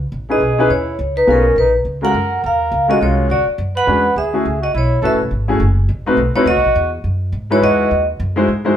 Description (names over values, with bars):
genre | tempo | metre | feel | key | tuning
jazz, small-group swing and bop | 208 BPM | 4/4 | swing 61% on 8ths | C# minor | A4 = 440 Hz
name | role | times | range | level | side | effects
upright bass | bass | 0.0-8.8 s | E1 to G#2 | -20 LUFS | equal | none
vibraphone with medium hard mallets | melody | 0.3-8.1 s | A#4 to F#5 | -17 LUFS | equal | none
mellow trumpet | second line | 0.3-8.0 s | C#4 to B4 | -21 LUFS | right 3 dB | none
clear concert grand piano | accompaniment | 0.3-8.8 s | G#3 to B#4 | -16 LUFS | left 2 dB | none
room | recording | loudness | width
wet studio reverb, RT60 0.8 s | band playing live in one room | -13 LUFS | side -10 dB against mid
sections
0.0-8.8 A section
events
none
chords
0.0 C#m9; 1.0 C#13; 2.1 F#maj7; 3.3 D; 3.9 E13; 4.4 A69; 5.6 F#m; 6.2 B7b9; 6.8 Emaj9; 7.9 D#madd11